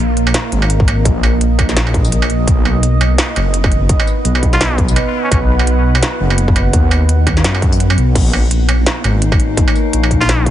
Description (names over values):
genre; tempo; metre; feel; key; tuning
half-time drum and bass; 169 BPM; 4/4; swing 57% on 16ths, half-time; unclear; A4 = 440 Hz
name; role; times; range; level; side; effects
deep dark ambient pad; sustained chords; 0.0-10.5 s; Bb3 to F#5; -20 LUFS; right 2 dB; chorus, built-in reverb, sidechain pumping
dark detuned saw bass; bass; 0.0-10.5 s; F#1 to F#2; -14 LUFS; equal; none
industrial drum kit; drums; 0.2-10.5 s; crash cymbal, hi-hat, snare drum, struck metal, tambourine; -18 LUFS; right 2 dB; none
electronic kick drum; drums; 0.8-10.5 s; none; -15 LUFS; equal; distortion
trumpet with straight mute; melody; 4.5-5.4, 10.2-10.5 s; Db4 to F4; -22 LUFS; equal; ping-pong delay
metallic inharmonic drone; texture; 8.8-10.5 s; Eb4; -22 LUFS; left 9 dB; chorus, built-in reverb
room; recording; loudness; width
little or no reverb; heavily compressed radio sound, multiband compression, nothing above 10.5 kHz; -11 LUFS; side -12 dB against mid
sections
0.0-10.5 A section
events
none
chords
0.0 Bb5; 2.5 B; 8.2 Bbm